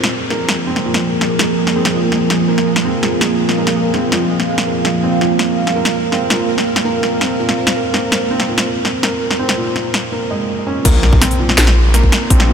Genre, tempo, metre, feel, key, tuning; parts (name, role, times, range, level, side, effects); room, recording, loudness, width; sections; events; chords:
half-time drum and bass; 165 BPM; 4/4; half-time; A4 = 436 Hz
deep dark ambient pad; sustained chords; 0.4-12.5 s; F3 to F5; -18 LUFS; right 2 dB; chorus, built-in reverb, sidechain pumping
felt-muted upright piano; arpeggios; 0.0-12.5 s; Bb2 to Db4; -20 LUFS; right 1 dB; vintage 12-bit sampler grit, low-pass filter, ping-pong delay
drum and bass drum kit; drums; 0.0-12.5 s; crash cymbal, hi-hat, snare drum; -18 LUFS; equal
pulsing gated texture; texture; 0.0-10.1 s; Ab3 to Bb4; -25 LUFS; right 3 dB; chorus, built-in reverb
phased detuned saw bass; bass; 10.8-12.5 s; Bb1; -12 LUFS; equal; phaser
impact; sound effects; 10.8-12.3 s; -19 LUFS; left 1 dB
electronic kick drum; drums; 10.9-12.4 s; -12 LUFS; equal
wet huge ambient reverb, RT60 8.0 s; dreamy mix soaked in reverb; -13 LUFS; side -7 dB against mid
0.0-10.8 A section; 10.8-12.5 B section
break 10.1-10.8; drop 10.8-12.5; impact 10.8-12.3
0.0 Bb5